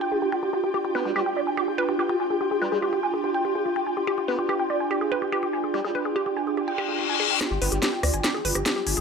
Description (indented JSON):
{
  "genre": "psychedelic trance",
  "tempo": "144 BPM",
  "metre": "4/4",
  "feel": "straight",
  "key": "unclear",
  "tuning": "A4 = 443 Hz",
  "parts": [
    { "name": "swarming drone", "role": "sustained chords", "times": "0.0-9.0 s", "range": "F4", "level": "-29 LUFS", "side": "equal", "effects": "built-in reverb" },
    { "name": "woody wave-folded pluck", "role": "riff", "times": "0.0-9.0 s", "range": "F4 to Ab5", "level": "-26 LUFS", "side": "moving between left 6 dB and right 4 dB", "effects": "chorus, auto-pan, dub echo" },
    { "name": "ethereal airy pad", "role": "texture", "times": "0.0-9.0 s", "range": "D4 to G5", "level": "-31 LUFS", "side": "right 4 dB", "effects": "ensemble chorus, built-in reverb" },
    { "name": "formant-sweep wobble bass", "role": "second line", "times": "0.9-7.9 s", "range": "G3 to B3", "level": "-37 LUFS", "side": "right 1 dB", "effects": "chorus, high-pass filter, tape echo" },
    { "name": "reverse cymbal and riser", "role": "sound effects", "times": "6.7-9.0 s", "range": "none", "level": "-28 LUFS", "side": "left 9 dB", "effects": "none" },
    { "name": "drum and bass drum kit", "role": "drums", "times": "7.4-9.0 s", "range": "hi-hat, rim click, snare drum", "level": "-25 LUFS", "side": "left 1 dB", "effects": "low-pass filter on snare, small room reverb, low-pass filter on hats" },
    { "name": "round analog bass", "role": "bass", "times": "7.5-9.0 s", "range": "G1 to D2", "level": "-28 LUFS", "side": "left 1 dB", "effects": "none" }
  ],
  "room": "light reverb",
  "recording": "none",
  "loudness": "-22 LUFS",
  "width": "side -5 dB against mid",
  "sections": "0.0-7.4 A section; 7.4-9.0 B section",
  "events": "reverse cymbal 6.7-7.4; build-up 7.4-9.0; drum fill 7.4-9.0; riser 7.4-9.0; filter sweep on synth drone 7.4-9.0",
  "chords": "0.0 G5",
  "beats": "0.33 | 0.74 1.16 1.57 1.99 | 2.41 2.83 3.24 3.66 | 4.08 4.49 4.91 5.33 | 5.74 6.16 6.58 6.99 | 7.41 7.83 8.24 8.66"
}